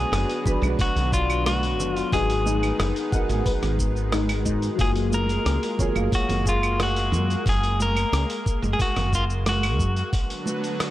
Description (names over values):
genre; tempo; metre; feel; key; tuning
sunset chillout; 90 BPM; 4/4; straight; F# major; A4 = 440 Hz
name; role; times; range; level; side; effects
clean electric guitar; melody; 0.0-10.1 s; E#4 to A#4; -27 LUFS; left 1 dB; spring reverb, tape echo
dark concert grand piano; accompaniment; 0.0-7.5 s; F#3 to E#5; -30 LUFS; moving between left 6 dB and right 4 dB; auto-pan, tape echo
lush unison pad; sustained chords; 0.0-10.9 s; D3 to B3; -31 LUFS; equal; chorus
woody fretless electric bass; bass; 0.0-10.0 s; F#1 to G#2; -25 LUFS; equal; tube saturation, analog chorus
soft round pluck; arpeggios; 0.1-7.1 s; D#4 to B5; -34 LUFS; left 4 dB; ensemble chorus, tape echo
dusty soul sampler-style drum kit; drums; 0.1-10.9 s; claves, hi-hat, rim click, shaker; -31 LUFS; right 1 dB; none
electronic kick drum; drums; 0.5-10.3 s; none; -25 LUFS; equal; none
congas; percussion; 0.5-10.6 s; none; -33 LUFS; right 3 dB; none
room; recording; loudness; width
digital ambience; dry, gritty hardware recording; -21 LUFS; side -14 dB against mid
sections
0.0-10.9 A section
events
none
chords
0.0 Bm; 2.1 G#m7; 4.8 F#maj9; 10.1 Bm